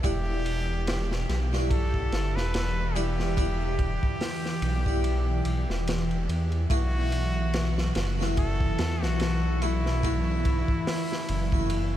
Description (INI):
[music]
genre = trip hop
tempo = 72 BPM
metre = 4/4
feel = swing 56% on 16ths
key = E minor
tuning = A4 = 440 Hz
[part]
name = trumpet with straight mute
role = melody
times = 0.0-12.0 s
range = E4 to B4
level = -34 LUFS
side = equal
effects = tape echo
[part]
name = harpsichord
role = accompaniment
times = 0.0-12.0 s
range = G3 to F#5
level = -33 LUFS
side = equal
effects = tremolo, vintage 12-bit sampler grit, tape echo
[part]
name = string machine, cellos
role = sustained chords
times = 0.0-12.0 s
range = E3 to E4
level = -34 LUFS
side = equal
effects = ensemble chorus
[part]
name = dark detuned saw bass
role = bass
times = 0.0-12.0 s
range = E1 to E2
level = -27 LUFS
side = equal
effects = none
[part]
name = crunchy breakbeat drum kit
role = drums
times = 0.0-11.9 s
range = hi-hat, kick drum, ride cymbal, snare drum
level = -31 LUFS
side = equal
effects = none
[sound]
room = moderate huge ambient reverb, RT60 7.8 s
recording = dreamy mix soaked in reverb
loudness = -24 LUFS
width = side -12 dB against mid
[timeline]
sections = 0.0-12.0 A section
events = none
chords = 0.0 Emadd9; 6.7 B7sus4